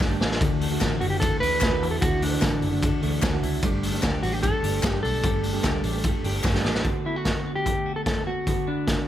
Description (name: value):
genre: jangly indie pop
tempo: 149 BPM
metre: 4/4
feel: straight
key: D major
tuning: A4 = 439 Hz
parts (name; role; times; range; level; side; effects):
- fingerpicked plugged-in steel-string acoustic guitar; accompaniment; 0.0-9.1 s; D3 to G4; -32 LUFS; right 6 dB; none
- twelve-string electric guitar; arpeggios; 0.0-9.1 s; D3 to G4; -31 LUFS; left 4 dB; lush chorus
- vintage muted fingered electric bass; bass; 0.0-6.8 s; F#1 to E2; -29 LUFS; equal; none
- raw garage drum kit; drums; 0.0-9.0 s; hi-hat, kick drum, ride cymbal, snare drum; -25 LUFS; equal; none
- group handclap; percussion; 0.8-6.5 s; none; -35 LUFS; left 3 dB; none
- mellow electric guitar; melody; 1.0-9.1 s; D4 to B4; -28 LUFS; equal; none
room: light reverb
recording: none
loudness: -22 LUFS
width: side -12 dB against mid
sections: 0.0-6.9 A section; 6.9-9.1 B section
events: drum fill 0.0-0.4, 6.4-6.9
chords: 0.4 Dadd9; 3.6 Gsus2; 6.9 D6